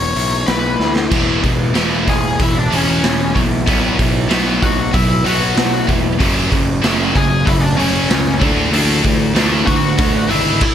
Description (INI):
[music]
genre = quiet-loud alternative rock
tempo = 95 BPM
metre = 4/4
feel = straight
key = unclear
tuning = A4 = 438 Hz
[part]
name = octave-fuzz lead guitar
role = melody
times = 0.0-10.7 s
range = C#4 to G#5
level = -19 LUFS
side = left 3 dB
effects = distortion, slapback echo
[part]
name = electric guitar through a small old amp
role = arpeggios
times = 0.0-10.6 s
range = F#2 to E4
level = -22 LUFS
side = left 1 dB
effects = phaser, slapback echo
[part]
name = fuzz picked electric bass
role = bass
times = 0.0-10.6 s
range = E1 to D2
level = -19 LUFS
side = equal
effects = overdrive
[part]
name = raw garage drum kit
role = drums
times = 0.2-10.7 s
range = crash cymbal, hi-hat, kick drum, snare drum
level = -18 LUFS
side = equal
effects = none
[part]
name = scooped high-gain guitar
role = riff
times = 1.1-10.6 s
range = E2 to D4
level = -18 LUFS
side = right 1 dB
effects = distortion
[sound]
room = light reverb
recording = none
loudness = -13 LUFS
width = side -9 dB against mid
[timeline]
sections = 0.0-1.1 A section; 1.1-10.7 B section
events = drum fill 0.8-1.1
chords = 0.0 E5; 1.1 E; 3.7 Bsus4; 6.2 F#m; 8.4 Dsus2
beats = 0.49 | 1.12 1.76 2.40 3.03 | 3.67 4.30 4.93 5.57 | 6.20 6.83 7.47 8.10 | 8.73 9.36 9.99 10.62